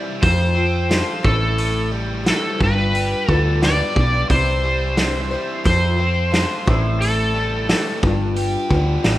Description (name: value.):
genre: folk rock and heartland rock.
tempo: 88 BPM.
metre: 4/4.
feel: straight.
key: unclear.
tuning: A4 = 440 Hz.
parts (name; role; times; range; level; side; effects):
picked twelve-string acoustic guitar; accompaniment; 0.0-9.2 s; A2 to C5; -27 LUFS; left 3 dB; plate reverb.
biting overdriven guitar; riff; 0.0-9.2 s; F2 to G4; -26 LUFS; left 1 dB; none.
overdriven slide guitar; melody; 0.2-8.0 s; A4 to D5; -22 LUFS; equal; plate reverb, digital delay.
hollow-body short-scale fingered electric bass; bass; 0.2-9.2 s; G1 to F2; -20 LUFS; equal; none.
loose indie drum kit; drums; 0.2-9.2 s; hi-hat, kick drum, snare drum; -21 LUFS; equal; none.
room: moderate studio reverb, RT60 0.6 s.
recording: rough home demo mix.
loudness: -16 LUFS.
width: side -15 dB against mid.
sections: 0.0-9.2 A section.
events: none.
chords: 0.2 F; 1.2 Am7; 2.6 G7; 4.3 C; 5.7 F; 6.7 Am7; 8.0 G7.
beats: 0.23 0.91 | 1.59 2.27 2.94 3.62 | 4.30 4.98 5.66 6.33 | 7.01 7.69 8.37 9.04.